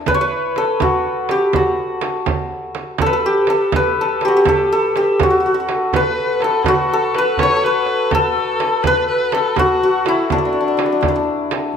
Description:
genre	Persian modal ensemble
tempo	82 BPM (dotted quarters)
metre	6/8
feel	straight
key	unclear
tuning	A4 = 442 Hz
part	santur	melody	0.0-11.8 s	D4 to C#5	-16 LUFS	left 1 dB	slapback echo
part	frame drum	percussion	0.1-11.6 s	none	-24 LUFS	right 8 dB	none
part	tombak	percussion	0.1-11.6 s	none	-26 LUFS	right 4 dB	none
part	rich kamancheh	second line	5.9-11.2 s	D4 to C#5	-21 LUFS	left 3 dB	none
room	moderate recital hall reverb, RT60 1.4 s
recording	none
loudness	-14 LUFS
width	side -7 dB against mid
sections	0.1-11.8 A section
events	none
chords	none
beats	| 0.07 0.80 | 1.54 2.27 | 3.00 3.73 | 4.46 5.19 | 5.92 6.65 | 7.38 8.11 | 8.84 9.57 | 10.30 11.03 | 11.77

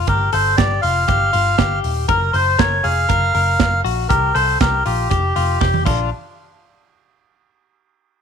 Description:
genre	jangly indie pop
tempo	119 BPM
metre	4/4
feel	straight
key	unclear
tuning	A4 = 438 Hz
part	direct-recorded clean electric guitar	arpeggios	0.0-6.1 s	F4 to C5	-22 LUFS	left 13 dB	none
part	vintage muted picked electric bass	bass	0.0-6.1 s	Eb1 to C2	-20 LUFS	equal	none
part	melodica	melody	0.1-6.1 s	D4 to F5	-18 LUFS	right 1 dB	slapback echo
part	modern studio drum kit	drums	0.1-6.0 s	crash cymbal, hi-hat, kick drum, ride cymbal, snare drum, toms	-21 LUFS	right 4 dB	none
room	light reverb, small room ambience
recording	1960s-style stereo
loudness	-14 LUFS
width	side -7 dB against mid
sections	0.0-6.1 A section; 6.1-8.1 B section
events	drum fill 5.6-6.1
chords	0.0 N.C.; 2.1 Gb; 4.1 C5; 5.1 Fsus2; 5.9 Bb; 6.1 N.C.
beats	| 0.07 0.58 1.08 1.59 | 2.09 2.59 3.10 3.60 | 4.10 4.61 5.11 5.61

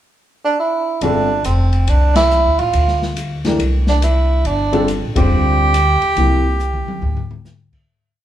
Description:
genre	modal jazz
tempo	140 BPM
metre	4/4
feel	swing 65% on 8ths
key	unclear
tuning	A4 = 441 Hz
part	mellow tenor saxophone	melody	0.4-7.4 s	C4 to G4	-17 LUFS	right 3 dB	none
part	warm grand piano	accompaniment	1.0-6.4 s	C3 to C5	-20 LUFS	left 2 dB	none
part	upright bass	bass	1.0-7.8 s	F1 to D2	-16 LUFS	equal	none
part	open jazz drum kit	drums	1.0-7.8 s	crash cymbal, hi-hat, kick drum, ride cymbal, rim click, snare drum, toms	-25 LUFS	left 2 dB	none
room	moderate large studio reverb, RT60 1.5 s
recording	band playing live in one room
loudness	-14 LUFS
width	side -11 dB against mid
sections	0.0-1.0 pickup bar; 1.0-7.9 A section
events	band accent 2.1, 5.1; fade-out 6.2-7.9; drum fill 6.6-7.4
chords	0.0 N.C.; 1.0 G7sus4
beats	0.15 0.58 | 1.01 1.44 1.87 2.30 | 2.73 3.16 3.59 4.02 | 4.45 4.88 5.30 5.73 | 6.16 6.59 7.02 7.45

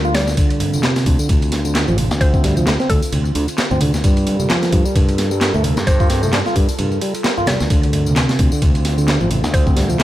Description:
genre	breakbeat, breaks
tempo	131 BPM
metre	4/4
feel	swing 57% on 16ths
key	D minor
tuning	A4 = 437 Hz
part	warbly tape-like pad	sustained chords	0.0-10.0 s	D3 to Bb4	-27 LUFS	right 1 dB	chorus, built-in reverb, sidechain pumping
part	tonewheel organ	riff	0.0-10.0 s	C3 to F4	-21 LUFS	right 1 dB	stopped rotary speaker, tube saturation, digital delay
part	modern bright fingered electric bass	bass	0.0-10.0 s	A1 to G2	-19 LUFS	equal	none
part	garage drum kit	drums	0.0-10.0 s	handclaps, hi-hat, tambourine	-27 LUFS	left 1 dB	studio reverb
part	mallet-like synth pluck	melody	0.1-9.7 s	A4 to D5	-26 LUFS	equal	chorus, AM radio sound, digital delay
part	breakbeat sampler-style drum kit	drums	0.1-10.0 s	kick drum, ride cymbal, snare drum	-18 LUFS	equal	studio reverb
part	congas	percussion	0.6-10.0 s	none	-26 LUFS	right 2 dB	none
room	digital ambience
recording	none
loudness	-14 LUFS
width	side -14 dB against mid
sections	0.0-10.0 A section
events	break 0.0-0.4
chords	0.4 Dm7; 4.0 Gm9; 7.7 Dm7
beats	| 0.38 0.83 1.29 1.75 | 2.21 2.67 3.12 3.58 | 4.04 4.50 4.96 5.41 | 5.87 6.33 6.79 7.25 | 7.71 8.16 8.62 9.08 | 9.54 9.99

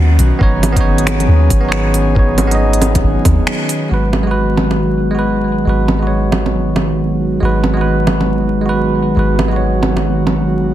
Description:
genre	future garage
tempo	137 BPM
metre	4/4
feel	swing 62% on 16ths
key	G# minor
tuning	A4 = 440 Hz
part	bell-like tine electric piano	accompaniment	0.0-10.7 s	G#3 to D#5	-18 LUFS	right 2 dB	sidechain pumping, ping-pong delay
part	airy breathy pad	sustained chords	0.0-10.7 s	D#3 to G#4	-18 LUFS	equal	chorus, sidechain pumping
part	soft 808-style bass	bass	0.0-10.7 s	G#1 to D#2	-16 LUFS	equal	sidechain pumping
part	organic electronic drum kit	drums	0.2-10.4 s	bongos, finger snaps, hi-hat	-19 LUFS	right 2 dB	soft clipping on snare
part	electronic kick drum	drums	0.4-3.4 s	none	-15 LUFS	equal	none
room	light reverb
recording	dense, heavily limited modern master, vinyl crackle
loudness	-12 LUFS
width	side -12 dB against mid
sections	0.0-3.9 A section; 3.9-10.7 B section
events	band accent 3.5; filter sweep on analog synth pad 3.9-10.7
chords	0.0 G#m7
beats	| 0.41 0.85 1.29 1.73 | 2.16 2.60 3.04 3.48 | 3.92 4.35 4.79 5.23 | 5.67 6.11 6.54 6.98 | 7.42 7.86 8.29 8.73 | 9.17 9.61 10.05 10.48

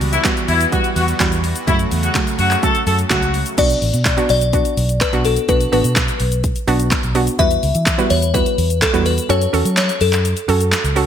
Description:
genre	dance-pop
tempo	126 BPM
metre	4/4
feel	straight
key	B minor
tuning	A4 = 440 Hz
part	hollow square pluck	accompaniment	0.0-11.1 s	C#3 to B4	-21 LUFS	right 4 dB	chorus, sidechain pumping
part	soft supersaw	sustained chords	0.0-3.6 s	C#3 to F#4	-26 LUFS	equal	sidechain pumping
part	vintage muted fingered electric bass	bass	0.0-11.1 s	A1 to F#3	-19 LUFS	equal	sidechain pumping
part	house drum kit	drums	0.0-11.1 s	crash cymbal, handclaps, hi-hat, kick drum, shaker, snare drum	-20 LUFS	equal	gated reverb
part	warm horn section	melody	0.1-3.4 s	E4 to A4	-20 LUFS	left 2 dB	sidechain pumping, ping-pong delay
part	glassy synth bell	melody	3.6-10.9 s	A4 to E5	-19 LUFS	left 4 dB	chorus
room	light reverb, digital ambience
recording	bright 1980s-style digital production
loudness	-14 LUFS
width	side -9 dB against mid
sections	0.0-3.6 A section; 3.6-11.1 B section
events	kick muted 9.3-11.1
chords	0.0 Emadd9; 1.7 F#m; 3.6 Bm; 7.4 Emadd9; 9.3 F#m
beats	0.25 0.72 1.20 | 1.68 2.15 2.63 3.10 | 3.58 4.06 4.53 5.01 | 5.49 5.96 6.44 6.92 | 7.39 7.87 8.34 8.82 | 9.29 9.77 10.25 10.72

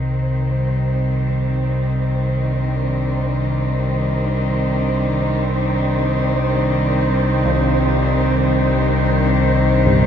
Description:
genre	ambient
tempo	50 BPM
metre	4/4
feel	straight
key	C minor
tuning	A4 = 439 Hz
part	rich chamber cello section	sustained chords	0.0-10.1 s	Eb3 to D4	-20 LUFS	left 1 dB	none
part	deep rumbling drone	drone	0.0-10.1 s	C2 to C3	-19 LUFS	equal	built-in reverb
part	wind-like tuned noise texture	texture	0.0-10.1 s	C5	-26 LUFS	right 2 dB	built-in reverb
part	carillon bells	arpeggios	7.5-10.1 s	G2 to C3	-21 LUFS	right 3 dB	ping-pong delay
room	moderate huge ambient reverb, RT60 8.6 s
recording	dark, warm production, nothing above 7.7 kHz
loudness	-16 LUFS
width	side -8 dB against mid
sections	0.0-10.1 A section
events	fade-in on cello section 0.0-10.1; fade-in on synth texture 0.0-10.1; fade-in on church bells 0.0-10.1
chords	0.0 C5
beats	0.86 2.06 | 3.27 4.46 5.67 6.87 | 8.06 9.27

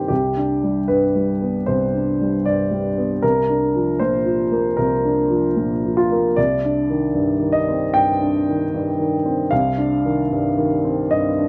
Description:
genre	neoclassical minimalist piano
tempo	76 BPM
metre	4/4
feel	rubato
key	C minor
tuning	A4 = 440 Hz
part	warm baby grand piano	solo	0.0-11.5 s	C2 to G5	-19 LUFS	equal	none
room	moderate small room reverb, RT60 0.5 s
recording	band playing live in one room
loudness	-19 LUFS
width	mono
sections	0.0-11.5 A section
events	none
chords	0.1 G/C; 3.2 Bb/C; 6.4 Cmadd9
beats	| 0.10 0.89 1.67 2.45 | 3.23 3.99 4.77 5.56 | 6.37 7.15 7.93 8.72 | 9.51 10.30 11.12

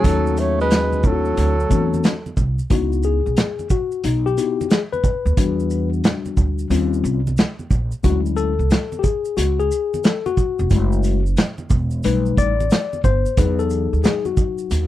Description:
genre	hip hop, jazz-hop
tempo	90 BPM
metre	4/4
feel	swing 65% on 16ths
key	C# minor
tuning	A4 = 440 Hz
part	breathy flugelhorn	melody	0.0-2.4 s	A4 to C#5	-22 LUFS	equal	none
part	breathy tenor saxophone	second line	0.0-2.4 s	F#3 to A3	-26 LUFS	right 6 dB	none
part	tine electric piano	accompaniment	0.0-14.9 s	E3 to D5	-21 LUFS	left 8 dB	none
part	upright bass	bass	0.0-14.9 s	E1 to E2	-20 LUFS	right 1 dB	none
part	vintage drum kit	drums	0.0-14.9 s	hi-hat, kick drum, shaker, snare drum	-18 LUFS	right 1 dB	none
part	maracas and congas	percussion	0.0-14.9 s	none	-32 LUFS	right 4 dB	none
room	little or no reverb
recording	none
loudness	-17 LUFS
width	side -14 dB against mid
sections	0.0-2.7 A section; 2.7-14.9 B section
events	tine electric piano solo 2.7-14.9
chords	0.0 D#m7b5; 1.4 D9; 2.7 C#m11; 5.4 Em9; 6.7 D#13; 8.0 Dmaj9#11; 10.7 F#m7; 12.0 B7alt; 13.4 Emaj9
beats	| 0.04 0.71 1.38 2.04 | 2.71 3.38 4.04 4.71 | 5.38 6.04 6.71 7.38 | 8.04 8.71 9.38 10.04 | 10.71 11.38 12.04 12.71 | 13.38 14.04 14.71

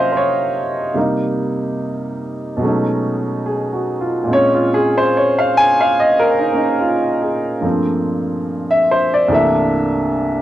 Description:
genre	solo jazz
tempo	72 BPM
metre	4/4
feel	swing 68% on 8ths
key	unclear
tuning	A4 = 440 Hz
part	warm baby grand piano	solo	0.0-10.4 s	C2 to Ab5	-14 LUFS	equal	none
room	moderate booth ambience, RT60 0.2 s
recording	home recording on cassette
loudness	-14 LUFS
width	side -13 dB against mid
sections	0.0-10.4 A section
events	grand piano solo 0.0-10.4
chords	0.0 Gbmaj13; 1.0 Cm7; 2.6 Cb13; 4.3 Bbm9; 7.6 Gm11; 9.3 C13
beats	0.12 | 0.96 1.79 2.63 3.46 | 4.30 5.13 5.96 6.80 | 7.63 8.47 9.30 10.14

